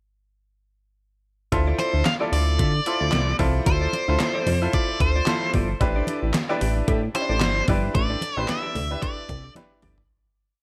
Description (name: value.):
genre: early-eighties boogie funk.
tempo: 112 BPM.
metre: 4/4.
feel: swing 56% on 16ths.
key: D dorian.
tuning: A4 = 442 Hz.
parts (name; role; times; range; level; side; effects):
bright grand piano; accompaniment; 1.5-10.0 s; C#4 to D5; -31 LUFS; equal; none.
clean electric guitar; riff; 1.5-10.0 s; C4 to E5; -37 LUFS; equal; subtle chorus.
chorused synth bass; bass; 1.5-10.0 s; G1 to D3; -26 LUFS; equal; none.
detuned 8-bit digital drum machine; drums; 1.5-10.1 s; handclaps, hi-hat, kick drum, snare drum, toms; -28 LUFS; equal; overdrive, gated reverb.
congas; percussion; 1.5-10.0 s; none; -35 LUFS; equal; none.
nasal lead guitar with a parked wah; melody; 1.8-9.5 s; C5 to F5; -29 LUFS; equal; overdrive.
room: little or no reverb.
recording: faint mains hum.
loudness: -23 LUFS.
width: mono.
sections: 1.5-10.1 verse.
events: fade-out 8.0-10.1; drum fill 9.6-10.1.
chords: 1.5 Dm7; 5.8 A7sus4.